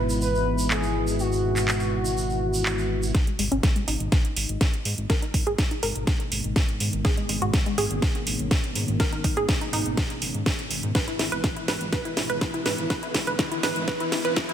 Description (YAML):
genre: progressive house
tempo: 123 BPM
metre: 4/4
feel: straight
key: G# minor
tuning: A4 = 440 Hz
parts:
  - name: expressive portamento lead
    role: melody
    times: 0.0-3.1 s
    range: F#4 to B4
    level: -28 LUFS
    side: equal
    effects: lush chorus, tape echo
  - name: lush unison pad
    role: sustained chords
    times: 0.0-14.5 s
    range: G#2 to E4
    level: -32 LUFS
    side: equal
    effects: chorus, sidechain pumping
  - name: fat analog bass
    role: bass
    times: 0.0-14.3 s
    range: F#1 to G#2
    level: -29 LUFS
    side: equal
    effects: sidechain pumping
  - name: tube shaker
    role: percussion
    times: 0.1-3.1 s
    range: none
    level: -34 LUFS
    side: right 4 dB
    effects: none
  - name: house drum kit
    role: drums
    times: 0.7-14.5 s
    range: handclaps, hi-hat, snare drum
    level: -28 LUFS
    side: right 1 dB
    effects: soft clipping on snare, low-pass filter on snare, low-pass filter on hats, low-pass filter on room
  - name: analog pluck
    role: arpeggios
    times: 3.1-14.5 s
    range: G#3 to B4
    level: -29 LUFS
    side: equal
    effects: chorus, sidechain pumping, tape echo
  - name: electronic kick drum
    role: drums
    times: 3.1-14.5 s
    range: none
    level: -24 LUFS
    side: equal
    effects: none
  - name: riser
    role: sound effects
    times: 11.9-14.5 s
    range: none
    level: -36 LUFS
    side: equal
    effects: none
room: light reverb, digital ambience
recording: dense, heavily limited modern master, high-pass filter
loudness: -22 LUFS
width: side -10 dB against mid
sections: 0.0-3.1 A section; 3.1-14.5 B section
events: build-up 3.1-14.5; drum fill 3.1-14.5; filter sweep on synth pluck 3.1-14.5; filter sweep on analog synth pad 3.1-14.5; riser 11.9-14.5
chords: 0.0 E/G#; 3.1 G#madd9; 11.0 E/G#